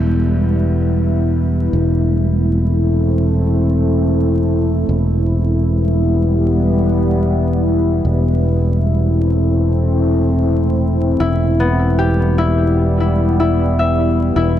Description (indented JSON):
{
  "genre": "trip hop",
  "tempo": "76 BPM",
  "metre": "4/4",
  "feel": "swing 57% on 16ths",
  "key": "E minor",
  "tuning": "A4 = 440 Hz",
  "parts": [
    { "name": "deep dark ambient pad", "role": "sustained chords", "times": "0.0-14.6 s", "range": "G3 to E4", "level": "-18 LUFS", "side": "left 1 dB", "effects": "chorus, built-in reverb" },
    { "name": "concert harp", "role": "arpeggios", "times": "0.0-0.2, 11.2-14.6 s", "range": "B3 to E5", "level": "-20 LUFS", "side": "left 3 dB", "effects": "analog delay" },
    { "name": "fingered electric bass", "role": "bass", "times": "0.0-14.6 s", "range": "E1", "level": "-15 LUFS", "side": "equal", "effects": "none" }
  ],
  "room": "little or no reverb",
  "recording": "dry, gritty hardware recording, transformer saturation, vinyl crackle",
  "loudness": "-13 LUFS",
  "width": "side -11 dB against mid",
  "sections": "0.0-14.6 A section",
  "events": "none",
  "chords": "0.0 Em; 1.7 Am/E; 4.9 Em; 8.0 Am/E; 11.2 Em",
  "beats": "0.15 0.94 | 1.73 2.52 3.31 4.09 | 4.88 5.67 6.46 7.25 | 8.04 8.83 9.62 10.41 | 11.20 11.99 12.78 13.57 | 14.36"
}